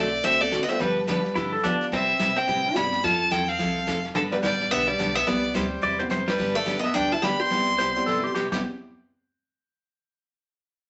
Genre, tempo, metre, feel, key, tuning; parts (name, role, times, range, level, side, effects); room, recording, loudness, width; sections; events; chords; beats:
country, western swing; 215 BPM; 4/4; swing 60% on 8ths; C major; A4 = 440 Hz
clear fiddle; melody; 0.0-8.4 s; A4 to C6; -27 LUFS; equal
archtop guitar, miked and amplified; second line; 0.0-8.3 s; D3 to G4; -31 LUFS; equal
picked steel-string acoustic guitar; accompaniment; 0.0-8.6 s; C3 to A4; -32 LUFS; equal
upright bass; bass; 0.0-8.6 s; F1 to D3; -44 LUFS; equal
vintage brush drum kit; drums; 0.2-8.6 s; brushed snare drum, crash cymbal, hi-hat, kick drum, snare drum, toms; -38 LUFS; equal
warm upright piano; accompaniment; 0.4-8.6 s; G3 to B4; -34 LUFS; equal
clean lap steel guitar; second line; 1.4-1.9, 5.8-8.6 s; D4 to D5; -29 LUFS; equal
wet studio reverb, RT60 0.6 s; nothing above 7.9 kHz; -24 LUFS; mono
0.0-6.4 A section; 6.4-8.6 B section; 8.6-9.8 C section
drum fill 5.8-6.4
0.0 D7; 0.8 G7; 1.9 Cmaj7; 3.0 Fmaj7; 4.2 G; 5.3 Cmaj7; 6.4 G; 7.5 Cmaj7; 8.6 N.C.
0.24 0.52 | 0.80 1.08 1.36 1.64 | 1.92 2.19 2.48 2.75 | 3.03 3.31 3.59 3.87 | 4.15 4.43 4.71 4.99 | 5.27 5.55 5.83 6.11 | 6.39 6.67 6.95 7.23 | 7.51 7.79 8.07 8.35